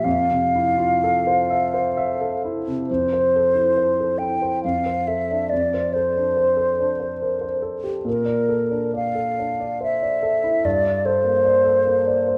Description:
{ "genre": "classical, impressionist duo for flute and grand piano", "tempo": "61-73 BPM", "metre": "3/4", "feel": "rubato", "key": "F major", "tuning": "A4 = 440 Hz", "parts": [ { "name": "mellow hollow silver concert flute", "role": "melody", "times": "0.0-12.4 s", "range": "Bb4 to G5", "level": "-22 LUFS", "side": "equal", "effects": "none" }, { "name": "warm concert grand piano", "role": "accompaniment", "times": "0.0-12.4 s", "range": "F2 to E5", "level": "-27 LUFS", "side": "equal", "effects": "none" } ], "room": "wet recital hall reverb, RT60 1.6 s", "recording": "none", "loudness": "-21 LUFS", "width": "mono", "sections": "0.0-2.9 A section; 2.9-12.4 B section", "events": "none", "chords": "0.1 Fmaj7; 5.5 F6; 8.1 Bbmaj7#11; 10.6 Gmadd9" }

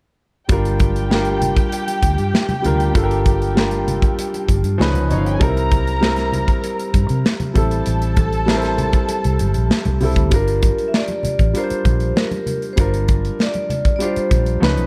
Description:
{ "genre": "lush 1970s-style soul", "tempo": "98 BPM", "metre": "4/4", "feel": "straight", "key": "G dorian", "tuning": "A4 = 441 Hz", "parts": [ { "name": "dark studio string section", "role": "second line", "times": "0.5-10.0 s", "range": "B3 to Bb5", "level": "-28 LUFS", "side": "equal", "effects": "none" }, { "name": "warm grand piano", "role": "accompaniment", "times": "0.5-14.9 s", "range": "E#3 to C#5", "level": "-24 LUFS", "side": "equal", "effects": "none" }, { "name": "vintage muted fingered electric bass", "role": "bass", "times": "0.5-14.9 s", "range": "G1 to C3", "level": "-22 LUFS", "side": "equal", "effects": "none" }, { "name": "modern studio drum kit", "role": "drums", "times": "0.5-14.9 s", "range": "hi-hat, kick drum, snare drum", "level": "-21 LUFS", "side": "equal", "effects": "none" }, { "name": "congas", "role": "percussion", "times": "0.5-14.9 s", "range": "none", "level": "-31 LUFS", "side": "equal", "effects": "none" }, { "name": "vibraphone with medium hard mallets", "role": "melody", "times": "10.3-14.9 s", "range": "Bb4 to E5", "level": "-26 LUFS", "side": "equal", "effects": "slapback echo" } ], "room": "studio reverb", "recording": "none", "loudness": "-18 LUFS", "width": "mono", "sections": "0.5-10.3 A section; 10.3-14.9 B section", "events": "none", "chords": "0.5 Gm7; 4.8 C#9; 5.4 C7; 7.6 Am7; 10.3 Gm7" }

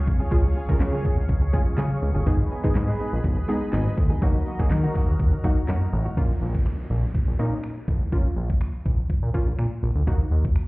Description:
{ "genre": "dance-pop", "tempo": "123 BPM", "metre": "4/4", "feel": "straight", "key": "unclear", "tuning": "A4 = 440 Hz", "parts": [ { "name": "wide unison pluck", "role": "accompaniment", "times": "0.0-10.7 s", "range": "Gb3 to Bb4", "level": "-31 LUFS", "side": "equal", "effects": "sidechain pumping" }, { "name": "sweeping resonant pad", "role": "sustained chords", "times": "0.0-6.2 s", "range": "Gb4 to Db6", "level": "-36 LUFS", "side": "left 1 dB", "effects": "chorus, sidechain pumping" }, { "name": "direct-recorded clean electric guitar", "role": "riff", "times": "0.1-6.2 s", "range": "Gb3 to Ab4", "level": "-33 LUFS", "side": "right 2 dB", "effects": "lush chorus" }, { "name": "fat analog bass", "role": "bass", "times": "0.1-10.5 s", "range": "G1 to Eb3", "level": "-24 LUFS", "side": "equal", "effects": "sidechain pumping" }, { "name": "pop drum kit", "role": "drums", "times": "0.1-10.7 s", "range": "finger snaps, handclaps, hi-hat, kick drum, snare drum", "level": "-23 LUFS", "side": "equal", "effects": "none" }, { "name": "downlifter", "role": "sound effects", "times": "6.2-10.1 s", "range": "none", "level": "-40 LUFS", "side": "equal", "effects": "none" } ], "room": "digital ambience", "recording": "heard muffled through a wall, club reverb, EQ", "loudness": "-21 LUFS", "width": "side -22 dB against mid", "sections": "0.0-6.2 A section; 6.2-10.7 B section", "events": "none", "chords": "0.0 Db; 2.3 Abm; 4.2 Ebm; 6.2 Bbm; 10.1 Ebm" }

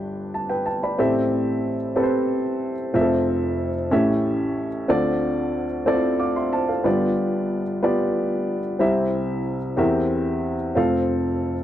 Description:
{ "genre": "gospel", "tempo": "61 BPM (dotted quarters)", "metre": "6/8", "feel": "straight", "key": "C major", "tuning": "A4 = 440 Hz", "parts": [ { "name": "warm upright piano", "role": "solo", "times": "0.0-11.6 s", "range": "F1 to D6", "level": "-20 LUFS", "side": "equal", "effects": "none" } ], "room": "light reverb", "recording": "dry, close 1970s-style studio recording", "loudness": "-20 LUFS", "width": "side -12 dB against mid", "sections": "0.0-8.8 A section; 8.8-11.6 B section", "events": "none", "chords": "0.0 G; 1.0 Am7; 2.9 Fmaj7; 3.9 A7; 4.9 Dm7; 6.9 G7; 8.8 C; 9.8 C7/E; 10.8 F" }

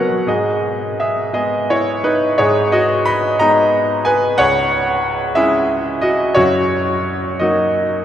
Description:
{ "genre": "classical, lyrical solo piano", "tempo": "56-62 BPM (dotted quarters)", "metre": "6/8", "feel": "rubato", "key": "G# minor", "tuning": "A4 = 440 Hz", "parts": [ { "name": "bright grand piano", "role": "solo", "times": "0.0-8.0 s", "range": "C#2 to B5", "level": "-14 LUFS", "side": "equal", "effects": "none" } ], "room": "wet cathedral reverb, RT60 6.8 s", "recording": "recorded in a church or concert hall", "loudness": "-14 LUFS", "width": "side -10 dB against mid", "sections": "0.3-8.0 A section", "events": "none", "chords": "0.3 G#m; 4.4 C#m; 6.4 F#6" }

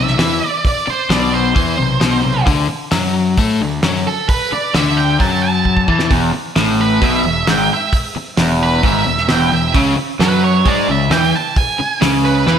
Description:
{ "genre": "classic rock", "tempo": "132 BPM", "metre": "4/4", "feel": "straight", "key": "E mixolydian", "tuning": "A4 = 439 Hz", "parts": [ { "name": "octave-fuzz lead guitar", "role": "melody", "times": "0.0-12.6 s", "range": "A4 to A5", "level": "-18 LUFS", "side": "right 4 dB", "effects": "distortion, slapback echo" }, { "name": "overdriven electric guitar", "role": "riff", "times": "0.0-12.6 s", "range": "E2 to A3", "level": "-17 LUFS", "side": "left 6 dB", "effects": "none" }, { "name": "fuzz picked electric bass", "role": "bass", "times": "0.0-12.6 s", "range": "E1 to A2", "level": "-21 LUFS", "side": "equal", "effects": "overdrive" }, { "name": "cloth-damped thuddy drum kit", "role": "drums", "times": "0.1-12.6 s", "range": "hi-hat, kick drum, snare drum", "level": "-19 LUFS", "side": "right 1 dB", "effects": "none" }, { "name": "overdriven electric guitar", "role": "riff", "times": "6.1-12.6 s", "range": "E2 to G#3", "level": "-20 LUFS", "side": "right 12 dB", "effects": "slapback echo" } ], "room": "moderate recital hall reverb, RT60 1.5 s, small room ambience", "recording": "big arena sound", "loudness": "-12 LUFS", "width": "side -8 dB against mid", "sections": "0.0-12.6 A section", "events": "lead electric guitar solo 0.0-12.6; drum fill 5.7-6.1", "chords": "0.0 C5; 2.5 D5; 6.1 E; 9.7 C#5" }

